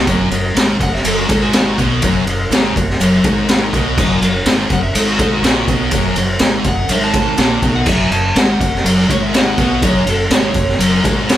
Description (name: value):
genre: garage rock duo or trio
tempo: 123 BPM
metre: 4/4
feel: straight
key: F# major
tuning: A4 = 439 Hz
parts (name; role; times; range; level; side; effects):
- combo organ; sustained chords; 0.0-11.4 s; F#4 to D#5; -28 LUFS; right 2 dB; none
- thick fuzz guitar; riff; 0.0-11.4 s; F#2 to B2; -17 LUFS; left 1 dB; distortion
- growling fingered electric bass; bass; 0.0-11.4 s; F#1 to B1; -22 LUFS; equal; overdrive
- raw garage drum kit; drums; 0.1-11.4 s; crash cymbal, kick drum, ride cymbal, snare drum; -15 LUFS; equal; none
- tube shaker; percussion; 0.1-11.4 s; none; -34 LUFS; right 3 dB; none
- overdriven slide guitar; melody; 0.8-1.8, 4.7-11.4 s; F#4 to A5; -21 LUFS; right 1 dB; none
room: moderate studio reverb, RT60 0.6 s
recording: band playing live in one room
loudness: -12 LUFS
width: side -12 dB against mid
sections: 0.1-11.4 A section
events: electric slide guitar solo 0.1-11.4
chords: 0.1 F#